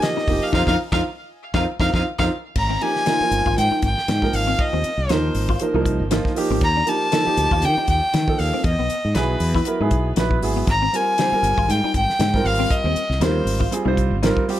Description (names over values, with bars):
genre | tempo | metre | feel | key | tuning
electric jazz fusion | 118 BPM | 4/4 | swing 55% on 16ths | unclear | A4 = 440 Hz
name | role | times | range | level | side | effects
rich violin | melody | 0.0-13.7 s | B4 to Bb5 | -22 LUFS | left 1 dB | tape echo
warm grand piano | accompaniment | 0.0-14.6 s | F3 to C5 | -24 LUFS | right 3 dB | none
damped 70s drum kit | drums | 0.0-14.6 s | crash cymbal, hi-hat, kick drum, snare drum | -24 LUFS | equal | none
clean electric guitar | stabs | 0.2-14.4 s | B3 to Bb4 | -28 LUFS | left 4 dB | ensemble chorus
mellow fretless electric bass | bass | 0.3-14.3 s | F1 to Eb3 | -22 LUFS | equal | none
room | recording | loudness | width
moderate studio reverb, RT60 0.6 s | none | -17 LUFS | side -13 dB against mid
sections
0.0-2.6 A section; 2.6-14.6 B section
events
band accent 0.5-2.6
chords
0.3 F7sus4; 2.6 Abmaj9; 6.6 Ebmaj9; 8.6 Emaj9; 10.7 Abmaj9